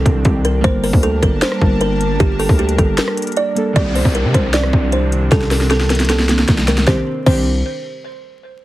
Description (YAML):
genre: hip hop, trap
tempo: 154 BPM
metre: 4/4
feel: half-time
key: C dorian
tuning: A4 = 441 Hz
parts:
  - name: kalimba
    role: melody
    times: 0.0-7.4 s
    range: G4 to D5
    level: -20 LUFS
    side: right 1 dB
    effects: tape echo
  - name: glassy digital keys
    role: accompaniment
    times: 0.0-7.4 s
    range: Eb3 to Bb4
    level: -22 LUFS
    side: right 1 dB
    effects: chorus
  - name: airy breathy pad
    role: sustained chords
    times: 0.0-7.1 s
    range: C3 to A5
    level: -24 LUFS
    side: equal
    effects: chorus
  - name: distorted 808-style bass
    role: bass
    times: 0.0-7.6 s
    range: G1 to C3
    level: -18 LUFS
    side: equal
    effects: distortion
  - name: trap drum kit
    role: drums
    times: 0.1-7.4 s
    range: crash cymbal, hi-hat, kick drum, rim click, snare drum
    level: -16 LUFS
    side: equal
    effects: none
  - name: downlifter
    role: sound effects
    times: 3.8-6.9 s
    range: none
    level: -28 LUFS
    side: equal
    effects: none
room: digital ambience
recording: heavily compressed radio sound, multiband compression, vinyl crackle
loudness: -13 LUFS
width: side -16 dB against mid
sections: 0.0-3.8 A section; 3.8-6.9 B section; 6.9-8.4 C section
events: break 3.0-3.8; drum fill 5.3-6.9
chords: 0.0 Cmadd9; 0.6 Gmadd9; 3.8 Cmadd9